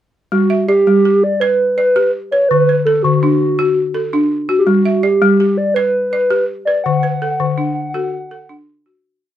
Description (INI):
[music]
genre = west african traditional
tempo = 110 BPM (dotted quarters)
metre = 12/8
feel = straight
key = G major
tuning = A4 = 443 Hz
[part]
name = hollow clarinet-like synth lead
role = melody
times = 0.3-8.6 s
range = F#4 to F#5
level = -14 LUFS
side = right 1 dB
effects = chorus
[part]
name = balafon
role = arpeggios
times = 0.3-9.2 s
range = D3 to E5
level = -16 LUFS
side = left 2 dB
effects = none
[sound]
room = moderate studio ambience, RT60 0.5 s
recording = none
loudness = -12 LUFS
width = side -11 dB against mid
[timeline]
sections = 0.3-9.0 A section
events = fade-out 6.9-9.0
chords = 0.3 G; 2.5 D; 4.7 G; 6.9 D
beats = | 0.32 0.86 1.41 1.96 | 2.50 3.04 3.59 4.13 | 4.67 5.22 5.76 6.31 | 6.85 7.40 7.95 8.49